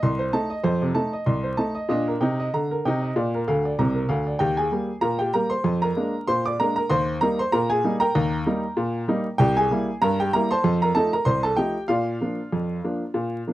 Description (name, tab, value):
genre	ragtime piano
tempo	96 BPM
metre	2/4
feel	swing 55% on 16ths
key	Eb major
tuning	A4 = 440 Hz
part	clear upright piano	solo	0.0-13.5 s	C2 to D6	-21 LUFS	equal	none
room	light reverb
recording	dry, close 1970s-style studio recording, vinyl crackle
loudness	-21 LUFS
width	side -15 dB against mid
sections	0.0-4.4 A section; 4.4-13.5 B section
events	upright piano fill 3.5-4.4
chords	0.0 F7; 1.9 Eb/Bb; 3.1 Bb; 4.4 Eb; 5.7 Bb7/F; 6.9 Eb; 9.4 C7; 10.6 F7; 11.9 Bb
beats	0.01 | 0.64 1.26 | 1.89 2.52 | 3.15 3.78 | 4.40 5.03 | 5.65 6.28 | 6.90 7.52 | 8.14 8.77 | 9.39 10.01 | 10.63 11.26 | 11.89 12.52 | 13.14